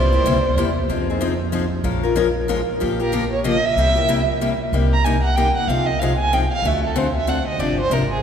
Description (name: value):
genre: acoustic string swing (jazz manouche)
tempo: 188 BPM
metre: 3/4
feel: swing 60% on 8ths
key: C minor from 4.7 s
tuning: A4 = 442 Hz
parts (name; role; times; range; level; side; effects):
- dark violin; melody; 0.0-0.8, 3.0-8.2 s; Ab4 to Bb5; -22 LUFS; right 2 dB; none
- picked acoustic archtop guitar; accompaniment; 0.0-8.0 s; C3 to Bb4; -21 LUFS; left 3 dB; none
- upright bass; bass; 0.0-8.2 s; G1 to F2; -22 LUFS; equal; none
room: wet cathedral reverb, RT60 5.5 s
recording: recorded in a church or concert hall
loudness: -17 LUFS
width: side -8 dB against mid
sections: 0.0-4.7 A section; 4.7-8.2 B section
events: violin solo 4.7-8.2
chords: 0.0 C7; 0.9 Fm7; 1.9 Bbm7; 2.8 Gm7b5/Bb; 3.8 C7; 4.7 Cm7; 5.7 Ab6/C; 6.6 D7; 7.6 G7sus4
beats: 0.26 0.58 | 0.90 1.21 1.53 | 1.85 2.17 2.49 | 2.81 3.13 3.44 | 3.76 4.08 4.40 | 4.72 5.04 5.36 | 5.68 6.00 6.31 | 6.63 6.95 7.27 | 7.59 7.91